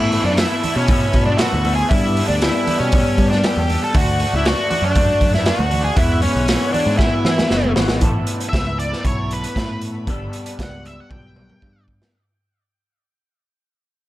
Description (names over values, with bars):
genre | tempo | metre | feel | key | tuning
psychedelic rock | 118 BPM | 4/4 | straight | unclear | A4 = 440 Hz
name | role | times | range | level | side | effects
octave-fuzz lead guitar | melody | 0.0-11.8 s | C#4 to G5 | -22 LUFS | equal | distortion, tape echo
dark studio string section | sustained chords | 0.0-12.1 s | A4 to B5 | -34 LUFS | right 4 dB | none
electric guitar through a small old amp | riff | 0.0-12.1 s | E2 to A4 | -23 LUFS | left 2 dB | rotary speaker
picked electric bass | bass | 0.0-12.0 s | F#1 to G3 | -22 LUFS | equal | none
raw garage drum kit | drums | 0.1-12.1 s | hi-hat, kick drum, snare drum, toms | -20 LUFS | equal | none
congas | percussion | 0.6-7.9 s | none | -29 LUFS | right 3 dB | none
room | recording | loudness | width
light reverb, small room reverb | none | -15 LUFS | side -15 dB against mid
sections
0.0-8.0 A section; 8.0-12.1 B section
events
drum fill 7.0-8.0, 11.1-12.1; fade-out 8.0-12.1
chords
0.0 Asus2; 1.9 Gadd9; 3.9 D; 6.0 Eadd9; 8.0 Asus2; 10.1 Gadd9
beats
0.38 0.89 1.40 | 1.91 2.42 2.93 3.44 | 3.95 4.46 4.96 5.47 | 5.98 6.49 7.00 7.51 | 8.02 8.54 9.05 9.56 | 10.08 10.59 11.11 11.62